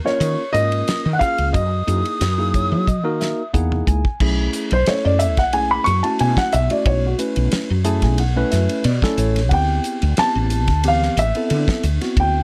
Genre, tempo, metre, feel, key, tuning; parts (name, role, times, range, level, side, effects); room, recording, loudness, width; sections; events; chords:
electric jazz fusion; 90 BPM; 4/4; straight; A4 = 439 Hz
bright tine electric piano; accompaniment; 0.0-12.4 s; E3 to A5; -26 LUFS; equal
dark baby grand piano; melody; 0.1-12.4 s; F#4 to C#6; -22 LUFS; equal
reedy concert flute; second line; 0.1-3.5 s; Db6 to Gb6; -28 LUFS; equal
damped 70s drum kit; drums; 0.1-12.3 s; crash cymbal, hi-hat, kick drum, ride cymbal, snare drum, toms; -26 LUFS; equal
woody fretless electric bass; bass; 0.2-12.4 s; A1 to Gb3; -22 LUFS; equal; ensemble chorus
light reverb; -19 LUFS; mono
0.0-4.2 A section; 4.2-12.4 B section
tine electric piano fill 2.2-4.2, 7.5-9.5; drum fill 2.9-4.2; grand piano solo 4.2-12.4
0.0 Eb9sus4; 1.5 Gb13; 4.2 B13sus4; 9.5 D13sus4